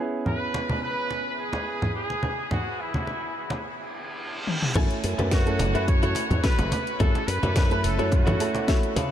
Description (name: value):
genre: nu-disco, nu disco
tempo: 107 BPM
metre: 4/4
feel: swing 54% on 16ths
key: F# minor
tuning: A4 = 440 Hz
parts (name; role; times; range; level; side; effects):
- clear baby grand piano; accompaniment; 0.0-9.0 s; A3 to G#5; -31 LUFS; right 3 dB; ping-pong delay
- bright trumpet section; melody; 0.3-8.9 s; E4 to C#5; -30 LUFS; equal; tape echo
- congas; percussion; 0.3-9.1 s; none; -30 LUFS; right 1 dB; none
- reverse cymbal; sound effects; 3.9-4.8 s; none; -35 LUFS; right 1 dB; none
- house drum kit; drums; 4.5-9.1 s; crash cymbal, hi-hat, snare drum, toms; -32 LUFS; left 2 dB; none
- direct-recorded clean electric guitar; riff; 4.8-9.1 s; E4 to F#5; -32 LUFS; left 4 dB; wide subtle chorus, ping-pong delay
- slap bass with an envelope filter; bass; 4.8-9.1 s; F#1 to C#3; -26 LUFS; equal; none
- electronic kick drum; drums; 4.8-8.8 s; none; -23 LUFS; equal; none
room: moderate huge ambient reverb, RT60 8.4 s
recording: dreamy mix soaked in reverb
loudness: -22 LUFS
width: side -10 dB against mid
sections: 0.0-4.8 A section; 4.8-9.1 B section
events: reverse cymbal 3.9-4.8; drum fill 4.5; drop 4.8-9.1; clean electric guitar fill 8.1-9.1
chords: 0.0 C#m7; 4.8 F#m7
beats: | 0.27 0.83 1.39 1.95 | 2.52 3.08 3.64 4.20 | 4.76 5.32 5.88 6.44 | 7.00 7.56 8.12 8.68